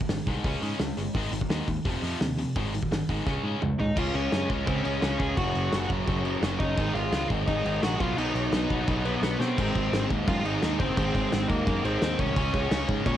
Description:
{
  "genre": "punk rock",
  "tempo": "171 BPM",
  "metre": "4/4",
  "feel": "straight",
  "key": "unclear",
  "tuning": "A4 = 438 Hz",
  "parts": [
    { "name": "distorted electric guitar", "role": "riff", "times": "0.0-13.2 s", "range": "F2 to Db4", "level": "-33 LUFS", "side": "left 8 dB", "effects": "overdrive, cassette tape" },
    { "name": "distorted electric guitar", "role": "riff", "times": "0.0-13.2 s", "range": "F2 to Db4", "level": "-34 LUFS", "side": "right 9 dB", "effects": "distortion, cassette tape" },
    { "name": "loose indie drum kit", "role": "drums", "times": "0.0-13.1 s", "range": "crash cymbal, hi-hat, kick drum, snare drum, toms", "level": "-30 LUFS", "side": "equal", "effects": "none" },
    { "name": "picked electric bass", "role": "bass", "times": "0.1-13.2 s", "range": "F1 to B2", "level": "-31 LUFS", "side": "equal", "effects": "none" },
    { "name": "dark smooth lead guitar", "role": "melody", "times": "3.8-13.2 s", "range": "Bb3 to Ab5", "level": "-31 LUFS", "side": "equal", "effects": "overdrive, cassette tape, analog delay" },
    { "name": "crunchy overdriven guitar", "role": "riff", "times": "4.0-13.2 s", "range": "Gb2 to Db4", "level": "-34 LUFS", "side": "equal", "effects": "cassette tape" }
  ],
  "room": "light reverb",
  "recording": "home recording on cassette",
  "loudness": "-24 LUFS",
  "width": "side -11 dB against mid",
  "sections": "0.0-4.0 A section; 4.0-9.6 B section; 9.6-13.2 C section",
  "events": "drum fill 3.3-4.0, 9.4",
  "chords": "0.4 Db5; 1.2 Ab5; 1.9 F5; 2.6 Ab5; 3.3 Db5; 4.0 Db; 5.4 Gb5; 6.8 Ab5; 8.0 B; 9.6 Ab; 12.4 Db5"
}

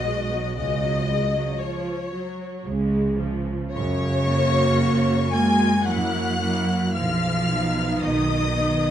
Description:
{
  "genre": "classical, slow romantic movement for string orchestra",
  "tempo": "57 BPM",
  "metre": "3/4",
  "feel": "rubato",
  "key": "F# major",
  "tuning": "A4 = 436 Hz",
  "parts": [
    { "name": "clear symphonic violin section", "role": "melody", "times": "0.0-8.9 s", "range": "C#5 to G#6", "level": "-30 LUFS", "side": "left 5 dB", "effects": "none" },
    { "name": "warm studio violin section", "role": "second line", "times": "0.0-8.9 s", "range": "C#5 to G#5", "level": "-27 LUFS", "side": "left 3 dB", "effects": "none" },
    { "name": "rich studio viola section", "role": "accompaniment", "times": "0.0-8.9 s", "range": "C#3 to F#4", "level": "-26 LUFS", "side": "right 1 dB", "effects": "none" },
    { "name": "clear studio double bass section", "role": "bass", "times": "0.0-8.9 s", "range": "B1 to F#2", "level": "-28 LUFS", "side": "right 3 dB", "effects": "none" },
    { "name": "rich studio cello section", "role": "bass", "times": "0.0-8.9 s", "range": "B2 to G#3", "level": "-26 LUFS", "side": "right 1 dB", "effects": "none" }
  ],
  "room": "moderate recital hall reverb, RT60 1.3 s",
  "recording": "dark, warm production",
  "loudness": "-20 LUFS",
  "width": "side -10 dB against mid",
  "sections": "0.0-3.7 A section; 3.7-8.9 B section",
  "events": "none",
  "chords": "0.0 G#m7/B; 0.6 C#sus4; 2.7 C#; 3.7 F#; 5.9 F#7; 7.0 B"
}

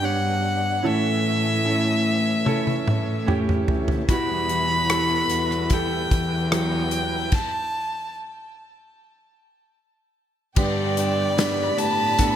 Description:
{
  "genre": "pop ballad",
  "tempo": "74 BPM",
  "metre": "4/4",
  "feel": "straight",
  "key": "unclear",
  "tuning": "A4 = 440 Hz",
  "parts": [
    { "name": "rich violin", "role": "melody", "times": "0.0-12.4 s", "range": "D5 to B5", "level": "-25 LUFS", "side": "equal", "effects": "none" },
    { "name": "clear grand piano", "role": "accompaniment", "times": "0.0-12.4 s", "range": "G2 to C#5", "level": "-27 LUFS", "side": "right 4 dB", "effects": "analog chorus" },
    { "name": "tonewheel organ", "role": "sustained chords", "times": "0.0-12.4 s", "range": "E3 to B4", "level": "-34 LUFS", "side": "left 1 dB", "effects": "overdrive, chorus vibrato, slow rotary speaker" },
    { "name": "warm studio cello section", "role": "bass", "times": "0.0-12.4 s", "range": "D2 to A2", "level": "-26 LUFS", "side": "left 2 dB", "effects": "none" },
    { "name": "natural country drum kit", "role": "drums", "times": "2.5-12.4 s", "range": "crash cymbal, hi-hat, kick drum, rim click, snare drum, toms", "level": "-24 LUFS", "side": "equal", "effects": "gated reverb" },
    { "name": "picked plugged-in steel-string acoustic guitar", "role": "arpeggios", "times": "4.1-12.4 s", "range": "E2 to G4", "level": "-34 LUFS", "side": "left 8 dB", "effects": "none" },
    { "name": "warm studio violin section", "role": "second line", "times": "10.6-12.4 s", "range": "G5 to B5", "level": "-31 LUFS", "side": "left 2 dB", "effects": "none" }
  ],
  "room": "light reverb, small room ambience",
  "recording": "bright 1980s-style digital production",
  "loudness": "-20 LUFS",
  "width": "side -10 dB against mid",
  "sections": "0.0-10.6 A section; 10.6-12.4 B section",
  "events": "drum fill 2.5-4.1; stop 7.3-10.6",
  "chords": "0.0 G; 0.8 A; 4.1 Emadd9; 7.3 N.C.; 10.6 G"
}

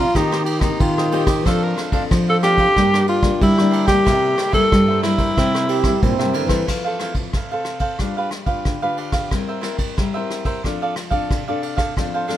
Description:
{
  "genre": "samba and choro",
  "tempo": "91 BPM",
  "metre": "4/4",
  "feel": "straight",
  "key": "F major",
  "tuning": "A4 = 441 Hz",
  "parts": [
    { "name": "breathy alto saxophone", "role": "melody", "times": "0.0-6.3 s", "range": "Eb4 to Bb4", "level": "-18 LUFS", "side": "equal", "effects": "none" },
    { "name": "cavaquinho", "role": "accompaniment", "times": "0.0-12.4 s", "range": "D4 to Bb5", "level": "-26 LUFS", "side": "right 3 dB", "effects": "none" },
    { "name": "nylon-string guitar", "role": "accompaniment", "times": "0.0-12.4 s", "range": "G2 to B4", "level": "-25 LUFS", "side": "left 7 dB", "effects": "none" },
    { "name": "nylon-string guitar", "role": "bass", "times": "0.0-6.6 s", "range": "Bb2 to G3", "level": "-20 LUFS", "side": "right 1 dB", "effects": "none" },
    { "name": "vintage brush drum kit", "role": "drums", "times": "0.1-12.4 s", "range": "crash cymbal, kick drum, ride cymbal, rim click", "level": "-22 LUFS", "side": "equal", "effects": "none" },
    { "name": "mellow trombone", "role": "second line", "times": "5.7-6.7 s", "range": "C4 to G4", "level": "-22 LUFS", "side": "right 7 dB", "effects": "none" }
  ],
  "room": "light reverb",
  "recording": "close, detailed microphones",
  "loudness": "-16 LUFS",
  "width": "side -12 dB against mid",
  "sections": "0.0-6.7 A section; 6.7-12.4 B section",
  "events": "none",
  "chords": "0.2 Eb6; 1.5 Dm7/F; 2.8 Gm; 4.1 C7; 6.7 Fmaj7; 8.0 G7; 9.3 C7/G; 10.6 F6"
}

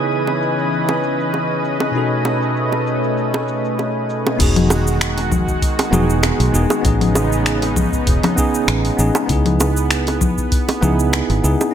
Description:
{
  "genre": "sunset chillout",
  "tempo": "98 BPM",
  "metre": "4/4",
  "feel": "swing 54% on 16ths",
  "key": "E major",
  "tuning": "A4 = 439 Hz",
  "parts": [
    { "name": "bell-like tine electric piano", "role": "accompaniment", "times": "0.0-11.7 s", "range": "B2 to A4", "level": "-21 LUFS", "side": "moving between left 4 dB and right 6 dB", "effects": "auto-pan, low-pass filter, ping-pong delay" },
    { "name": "lush unison pad", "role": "sustained chords", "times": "0.0-11.7 s", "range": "C#3 to D#5", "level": "-21 LUFS", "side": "equal", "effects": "chorus" },
    { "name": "drifting glass-harmonics texture", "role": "texture", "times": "0.0-4.4 s", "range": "G#4 to G#5", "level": "-28 LUFS", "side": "right 1 dB", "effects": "chorus, built-in reverb" },
    { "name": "deep house drum kit", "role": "drums", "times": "0.1-11.7 s", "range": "congas, crash cymbal, finger snaps, hi-hat, shaker", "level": "-21 LUFS", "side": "left 3 dB", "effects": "overdrive, low-pass filter on perc, low-pass filter on hats, low-pass filter on cymbals, low-pass filter on snare" },
    { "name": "bongos", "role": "percussion", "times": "0.3-11.7 s", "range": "none", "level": "-22 LUFS", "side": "right 3 dB", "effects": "none" },
    { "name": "fingered electric bass", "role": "bass", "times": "4.4-11.5 s", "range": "E1 to C#2", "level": "-18 LUFS", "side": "equal", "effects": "none" },
    { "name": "electronic kick drum", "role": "drums", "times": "4.4-10.7 s", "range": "none", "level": "-19 LUFS", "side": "equal", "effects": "overdrive" }
  ],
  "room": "light reverb, digital ambience",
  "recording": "none",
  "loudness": "-15 LUFS",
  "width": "side -9 dB against mid",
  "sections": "0.0-4.4 A section; 4.4-11.7 B section",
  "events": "none",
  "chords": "0.0 C#m9; 1.9 B9; 4.4 Emaj9; 6.8 Amaj9#11; 9.3 C#m9"
}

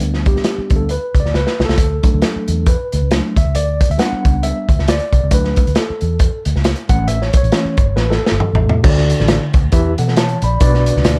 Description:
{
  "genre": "uptempo 1960s-style soul",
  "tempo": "136 BPM",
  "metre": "4/4",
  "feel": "swing 58% on 8ths",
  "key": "D major",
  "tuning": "A4 = 440 Hz",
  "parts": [
    { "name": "mellow tine electric piano", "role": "accompaniment", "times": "0.0-11.2 s", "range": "B2 to B5", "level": "-22 LUFS", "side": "equal", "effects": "none" },
    { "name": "vintage muted fingered electric bass", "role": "bass", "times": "0.0-11.2 s", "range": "G1 to B2", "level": "-20 LUFS", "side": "equal", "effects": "none" },
    { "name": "crunchy breakbeat drum kit", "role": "drums", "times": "0.0-11.2 s", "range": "crash cymbal, hi-hat, kick drum, snare drum, toms", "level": "-18 LUFS", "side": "equal", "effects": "none" }
  ],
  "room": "little or no reverb",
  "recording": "dark, warm production",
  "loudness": "-15 LUFS",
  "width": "mono",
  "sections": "0.0-8.8 A section; 8.8-11.2 B section",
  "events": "tine electric piano solo 0.0-8.8; drum fill 1.3-1.8, 8.0-8.8",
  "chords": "0.0 G; 1.8 D; 3.3 G; 5.3 D; 6.9 A; 8.8 D; 9.7 Em; 10.6 Bm"
}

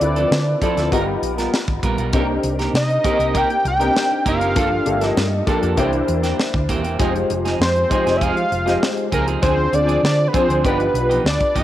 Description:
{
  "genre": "polished 1980s jazz-funk pop",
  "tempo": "99 BPM",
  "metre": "4/4",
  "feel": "straight",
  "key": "C minor",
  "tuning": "A4 = 440 Hz",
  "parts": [
    { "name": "fat analog lead", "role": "melody", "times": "0.0-11.6 s", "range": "Bb4 to G5", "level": "-20 LUFS", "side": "equal", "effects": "chorus, cassette tape" },
    { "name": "warm grand piano", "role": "accompaniment", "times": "0.0-11.6 s", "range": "Ab3 to D5", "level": "-22 LUFS", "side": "left 2 dB", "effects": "ensemble chorus, cassette tape" },
    { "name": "clean electric guitar", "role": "riff", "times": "0.0-11.6 s", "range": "E3 to A#4", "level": "-25 LUFS", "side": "right 5 dB", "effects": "lush chorus, cassette tape" },
    { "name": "hollow-body short-scale fingered electric bass", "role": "bass", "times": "0.0-11.6 s", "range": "Eb1 to D3", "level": "-23 LUFS", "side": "equal", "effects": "none" },
    { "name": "tight funk drum kit", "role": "drums", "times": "0.0-11.6 s", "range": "hi-hat, kick drum, snare drum", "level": "-22 LUFS", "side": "equal", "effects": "cassette tape" }
  ],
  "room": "light reverb, small room reverb",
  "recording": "home recording on cassette",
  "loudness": "-16 LUFS",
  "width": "side -12 dB against mid",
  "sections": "0.0-11.6 A section",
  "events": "none",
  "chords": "0.0 Dm9; 0.9 G7alt; 2.1 Cm7; 4.6 Gm9; 5.8 C7; 7.0 Fm7; 9.4 Dm7b5; 10.6 G7b13"
}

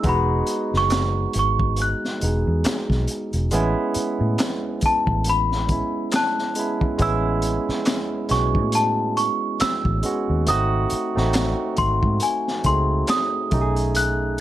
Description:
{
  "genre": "R&B, neo-soul",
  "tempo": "69 BPM",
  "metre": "4/4",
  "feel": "swing 57% on 16ths",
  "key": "unclear",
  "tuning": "A4 = 441 Hz",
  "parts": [
    { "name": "worn celesta", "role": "melody", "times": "0.0-14.4 s", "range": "G#5 to F#6", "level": "-23 LUFS", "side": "equal", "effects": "none" },
    { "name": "barky tine electric piano", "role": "accompaniment", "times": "0.0-14.4 s", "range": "G#3 to G#4", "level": "-25 LUFS", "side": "right 2 dB", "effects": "none" },
    { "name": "vintage muted fingered electric bass", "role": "bass", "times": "0.0-14.4 s", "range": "E1 to A2", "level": "-23 LUFS", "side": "equal", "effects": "none" },
    { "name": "crunchy breakbeat drum kit", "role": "drums", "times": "0.0-14.4 s", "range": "handclaps, hi-hat, kick drum, snare drum", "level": "-25 LUFS", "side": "equal", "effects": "none" }
  ],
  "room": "light reverb",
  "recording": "none",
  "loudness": "-19 LUFS",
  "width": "side -13 dB against mid",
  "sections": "0.0-7.0 A section; 7.0-14.4 B section",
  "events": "none",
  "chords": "0.0 Emaj9; 3.5 Amaj7; 7.0 Amaj9; 10.5 G#7b9; 13.5 B13"
}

